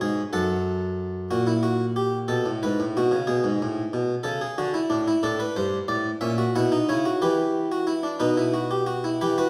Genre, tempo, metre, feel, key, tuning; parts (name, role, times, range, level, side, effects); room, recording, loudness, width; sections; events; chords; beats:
classical, baroque-style 3-part fugue for harpsichord; 61 BPM (dotted quarters); 6/8; straight; A4 = 436 Hz
harpsichord; solo; 0.0-9.5 s; F#2 to F#5; -25 LUFS; equal
wet recital hall reverb, RT60 1.4 s; heard from further back in the room; -25 LUFS; mono
0.0-1.3 A section; 1.3-9.2 B section
0.3 F#m; 1.3 F#7/A#; 2.3 B5; 3.3 G#m; 4.2 A/C#; 5.2 Gadd9; 6.2 F#7/A#; 7.2 Em; 8.2 B
0.32 | 1.30 2.29 | 3.27 4.25 | 5.22 6.20 | 7.20 8.20 | 9.20